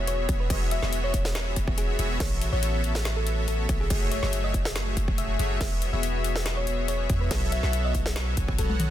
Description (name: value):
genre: future bass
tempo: 141 BPM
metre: 4/4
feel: half-time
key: E major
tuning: A4 = 440 Hz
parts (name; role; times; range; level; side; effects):
- big bright polysynth; riff; 0.0-8.9 s; A3 to G#5; -31 LUFS; left 1 dB; analog chorus, sidechain pumping
- long sustained 808-style bass; bass; 0.0-8.9 s; E1 to E2; -28 LUFS; equal; sidechain pumping
- thumb-piano-like synth pluck; melody; 0.1-8.9 s; G#4 to E5; -34 LUFS; left 2 dB; chorus, sidechain pumping, dub echo
- trap drum kit; drums; 0.1-8.9 s; crash cymbal, hi-hat, snare drum, toms; -33 LUFS; left 1 dB; none
- electronic kick drum; drums; 0.3-8.6 s; none; -28 LUFS; equal; none
room: digital ambience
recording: dense, heavily limited modern master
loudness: -24 LUFS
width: side -12 dB against mid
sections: 0.0-8.9 A section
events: drum fill 8.7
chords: 0.0 E69; 2.2 A69; 3.9 F#m9; 5.6 E69; 7.3 B9sus4